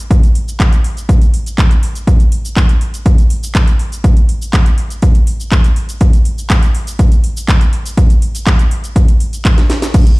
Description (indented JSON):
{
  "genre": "house",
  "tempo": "122 BPM",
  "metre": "4/4",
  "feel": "straight",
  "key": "none",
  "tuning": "none",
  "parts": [
    { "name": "electronic kick drum", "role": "drums", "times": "0.1-10.0 s", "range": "none", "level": "-10 LUFS", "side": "equal", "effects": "none" },
    { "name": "house drum kit", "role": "drums", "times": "0.1-10.2 s", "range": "cabasa, crash cymbal, handclaps, hi-hat, snare drum", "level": "-22 LUFS", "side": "equal", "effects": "sidechain pumping on hats, sidechain pumping on perc, sidechain pumping on cymbals" }
  ],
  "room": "little or no reverb",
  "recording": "played on a big sound system in a bare room, large studio reverb",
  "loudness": "-10 LUFS",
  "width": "side -24 dB against mid",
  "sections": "0.0-9.9 A section",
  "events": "drum fill 9.6-9.9",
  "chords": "none",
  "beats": "| 0.11 0.60 1.09 1.58 | 2.07 2.57 3.06 3.55 | 4.04 4.53 5.03 5.52 | 6.01 6.50 6.99 7.48 | 7.98 8.47 8.96 9.45 | 9.94"
}